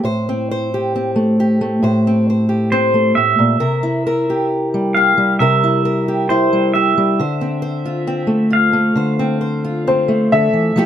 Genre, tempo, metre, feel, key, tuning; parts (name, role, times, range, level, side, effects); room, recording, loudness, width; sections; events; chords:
acoustic folk-pop ballad; 67 BPM; 4/4; straight; A4 = 440 Hz
fingerpicked old ladder-braced acoustic guitar; accompaniment; 0.0-10.9 s; A2 to C5; -15 LUFS; equal
pedal steel guitar; second line; 2.7-10.3 s; C5 to F5; -17 LUFS; right 1 dB
warm upright piano; melody; 9.9-10.9 s; A4 to E5; -15 LUFS; left 2 dB
light reverb; close, detailed microphones; -14 LUFS; side -10 dB against mid
0.0-10.8 A section
pedal steel guitar solo 0.0-10.8
0.0 Am7; 3.6 C7; 7.2 Dm9